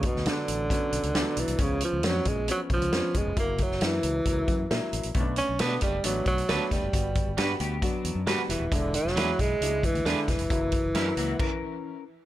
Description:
uptempo 1960s-style soul; 135 BPM; 4/4; straight; A4 = 440 Hz
breathy tenor saxophone; melody; 0.0-12.1 s; B2 to C#4; -28 LUFS; right 1 dB; tape echo
clear concert grand piano; accompaniment; 0.0-11.3 s; E3 to F#4; -34 LUFS; left 2 dB
fingered electric bass; bass; 0.0-11.3 s; D#1 to D3; -32 LUFS; equal
vintage drum kit; drums; 0.0-11.5 s; crash cymbal, hi-hat, kick drum, snare drum; -29 LUFS; equal
electric guitar at the edge of break-up; stabs; 5.6-11.1 s; C#4 to B4; -34 LUFS; right 6 dB; tape echo
mellow electric guitar; riff; 7.4-12.0 s; F#3 to B4; -35 LUFS; left 9 dB; analog chorus
little or no reverb; -24 LUFS; side -14 dB against mid
0.0-12.3 A section
stop 11.4-12.3
0.0 D6; 1.6 C#7; 3.4 F#7; 5.2 Bm7; 6.9 Gmaj7; 8.7 E7; 10.5 F#7

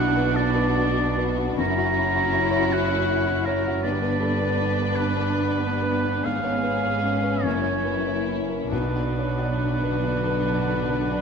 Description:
classical, romantic movement for piano and orchestra; 45-54 BPM (dotted quarters); 12/8; rubato; B minor; A4 = 440 Hz
clear grand piano; melody; 0.0-11.2 s; B1 to D5; -26 LUFS; left 3 dB
rich symphonic violin section; melody; 0.0-11.2 s; E4 to B4; -35 LUFS; left 4 dB
clear oboe; second line; 0.0-11.2 s; A#4 to A#5; -27 LUFS; right 2 dB
clear symphonic violin section; second line; 0.0-11.2 s; C#4 to E4; -33 LUFS; left 2 dB
rich symphonic viola section; accompaniment; 0.0-11.2 s; A#3 to C#4; -32 LUFS; right 4 dB
dark French horn section; sustained chords; 0.0-11.2 s; A#3 to E4; -30 LUFS; left 3 dB
clear symphonic double bass section; bass; 0.0-11.2 s; F#1 to B1; -30 LUFS; right 5 dB
rich studio cello section; bass; 0.0-11.2 s; F#2 to D3; -32 LUFS; right 4 dB
timpani; percussion; 8.7-11.2 s; B2; -33 LUFS; right 3 dB
moderate scoring stage reverb, RT60 1.5 s; -21 LUFS; side -6 dB against mid
0.0-11.2 A section
timpani fill 8.7-11.2
0.0 Bm; 1.6 F#7; 3.8 G; 6.3 C#7/G#; 7.4 F#7; 8.7 Bm

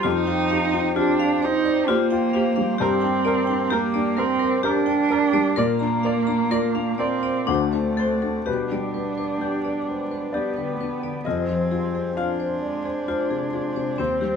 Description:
neoclassical piano and strings; 65 BPM; 3/4; rubato; A4 = 440 Hz
muted cello; second line; 0.0-14.4 s; F3 to Eb4; -24 LUFS; right 6 dB
dark baby grand piano; accompaniment; 0.0-14.4 s; D2 to F5; -26 LUFS; left 4 dB
muted viola; accompaniment; 0.0-14.4 s; B3 to D5; -29 LUFS; right 3 dB
hand-pumped harmonium; sustained chords; 0.0-14.4 s; Bb3 to Ab5; -32 LUFS; equal
vibraphone with hard mallets; arpeggios; 0.0-14.3 s; C4 to Bb5; -28 LUFS; left 9 dB
light reverb; minimal, uncompressed stereo recording; -20 LUFS; side -6 dB against mid
0.0-8.5 A section; 8.5-14.4 B section
0.0 Fsus2; 2.8 Gm; 5.6 Bb; 7.5 D7; 8.5 G; 11.2 Fm

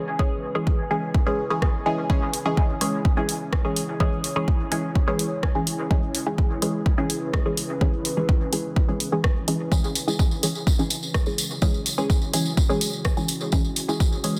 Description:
dub techno; 126 BPM; 4/4; straight; C# minor; A4 = 439 Hz
deep dark ambient pad; sustained chords; 0.0-14.4 s; C#4 to C#5; -35 LUFS; equal; chorus, built-in reverb, sidechain pumping
filtered dub chord stab; stabs; 0.2-14.4 s; E3 to G#4; -28 LUFS; equal; chorus, phaser, sidechain pumping, dub echo
electronic kick drum; drums; 0.2-14.1 s; -24 LUFS; equal; overdrive, small room reverb
punchy analog drum machine; drums; 1.6-14.3 s; hi-hat, rim click; -30 LUFS; equal; overdrive, small room reverb
tambourine; percussion; 9.7-14.4 s; -33 LUFS; equal
light reverb, digital ambience; dense, heavily limited modern master; -23 LUFS; mono
0.0-14.4 A section
filter sweep on synth stab 0.0-14.4
0.0 C#m

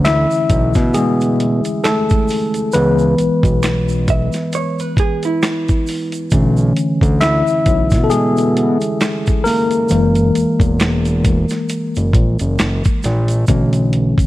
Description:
R&B, neo-soul; 67 BPM; 4/4; swing 57% on 16ths; B dorian; A4 = 435 Hz
tine electric piano; accompaniment; 0.0-14.3 s; D3 to E5; -16 LUFS; left 1 dB; medium stereo tremolo
fat analog bass; bass; 0.0-14.1 s; E1 to B2; -16 LUFS; equal
dusty soul sampler-style drum kit; drums; 0.1-14.3 s; finger snaps, hi-hat, kick drum, snare drum; -17 LUFS; equal
finger snaps and tube shaker; percussion; 0.1-14.3 s; -32 LUFS; right 6 dB
hollow-body jazz guitar; second line; 4.1-6.3 s; E4 to E5; -21 LUFS; right 4 dB
light reverb; vinyl crackle; -13 LUFS; side -16 dB against mid
0.0-13.5 A section
tine electric piano solo 0.0-13.5
0.0 Bm11; 2.7 C#m7; 6.3 Bm11; 9.9 F#9; 13.5 Bm11

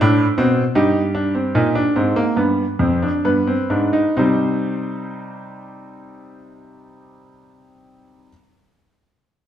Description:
classical, baroque-style 3-part fugue for grand piano; 63-81 BPM; 4/4; straight; C minor; A4 = 438 Hz
clear concert grand piano; solo; 0.0-8.3 s; F2 to C5; -16 LUFS; equal
wet recital hall reverb, RT60 1.4 s; -16 LUFS; side -10 dB against mid
0.0-4.2 A section; 4.2-7.9 B section
slowing down 0.0-4.2
0.0 F#dim (rootless); 0.8 Cm/G; 2.4 G7; 4.2 Cm

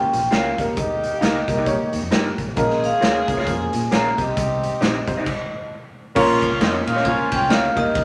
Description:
uptempo 1960s-style soul; 134 BPM; 4/4; swing 59% on 8ths; Bb dorian; A4 = 440 Hz
vibraphone with hard mallets; melody; 0.0-8.0 s; Db5 to Bb5; -26 LUFS; equal
warm horn section; second line; 0.0-7.5 s; Eb3 to Ab4; -29 LUFS; equal
warm upright piano; accompaniment; 0.0-8.0 s; Bb3 to Eb5; -27 LUFS; equal
fingered electric bass; bass; 0.1-8.0 s; Ab1 to Bb2; -31 LUFS; equal
raw garage drum kit; drums; 0.1-8.0 s; crash cymbal, hi-hat, kick drum, ride cymbal, snare drum; -26 LUFS; equal
electric guitar through a small old amp; stabs; 0.3-7.6 s; Db4 to F5; -29 LUFS; equal
glockenspiel with hard plastic mallets; second line; 6.4-8.0 s; Db6 to Ab6; -28 LUFS; equal
moderate studio reverb, RT60 0.7 s; -20 LUFS; mono
0.0-6.2 A section; 6.2-8.0 B section
stop 5.3-6.2
0.0 Bbm; 0.5 Eb; 2.6 Bbm; 4.1 Cm; 6.2 Bbm

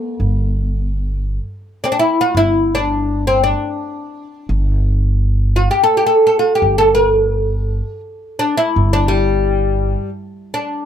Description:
Arabic maqam ensemble; 84 BPM; 3/4; straight; G maqam rast; A4 = 440 Hz
oud; melody; 0.0-10.9 s; G3 to Bb4+50c; -15 LUFS; left 1 dB
upright bass; bass; 0.2-9.9 s; G1; -17 LUFS; equal
little or no reverb; close, detailed microphones; -14 LUFS; side -9 dB against mid
0.0-10.9 A section

